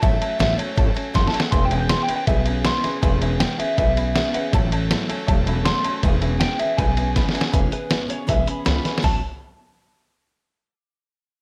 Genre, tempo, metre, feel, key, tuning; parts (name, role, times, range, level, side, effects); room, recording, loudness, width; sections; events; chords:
rockabilly; 160 BPM; 4/4; straight; A major; A4 = 440 Hz
electric guitar through a small old amp; melody; 0.0-9.2 s; B4 to C6; -28 LUFS; equal; analog chorus, analog delay
dark upright piano; accompaniment; 0.0-9.2 s; B4 to B5; -34 LUFS; equal
picked steel-string acoustic guitar; accompaniment; 0.0-9.2 s; A2 to A4; -31 LUFS; equal
upright bass; bass; 0.0-9.2 s; E1 to C#2; -26 LUFS; equal
lo-fi sampler-style drum kit; drums; 0.0-9.1 s; hi-hat, kick drum, ride cymbal, snare drum, toms; -24 LUFS; equal
little or no reverb; -21 LUFS; mono
0.0-7.5 A section; 7.5-9.0 B section; 9.0-10.5 C section
drum fill 1.2-1.5, 7.2-7.5, 8.9
0.0 A6; 1.5 E6; 4.5 A6; 6.0 E6; 9.0 A6